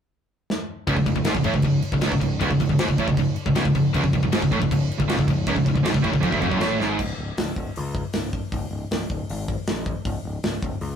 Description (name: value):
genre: heavy metal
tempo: 157 BPM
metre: 4/4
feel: straight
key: unclear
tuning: A4 = 444 Hz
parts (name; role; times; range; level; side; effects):
- modern studio drum kit; drums; 0.5-10.9 s; crash cymbal, hi-hat, kick drum, snare drum; -26 LUFS; left 1 dB; none
- distorted electric guitar; riff; 0.9-7.0 s; C#2 to A2; -21 LUFS; right 3 dB; overdrive
- tight distorted guitar; riff; 0.9-7.0 s; C#2 to A2; -26 LUFS; left 5 dB; distortion
- overdriven picked electric bass; bass; 0.9-11.0 s; C#1 to C#2; -30 LUFS; left 2 dB; none
room: moderate studio reverb, RT60 0.6 s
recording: rough rehearsal-room recording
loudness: -20 LUFS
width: side -8 dB against mid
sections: 0.9-7.0 A section; 7.0-11.0 B section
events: drum fill 0.5-0.9, 6.8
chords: 0.0 N.C.; 0.9 C#5; 9.7 N.C.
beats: 0.11 0.49 | 0.88 1.26 1.64 2.03 | 2.41 2.79 3.18 3.56 | 3.94 4.33 4.71 5.09 | 5.47 5.86 6.24 6.62 | 7.00 7.38 7.77 8.15 | 8.53 8.91 9.29 9.67 | 10.05 10.44 10.81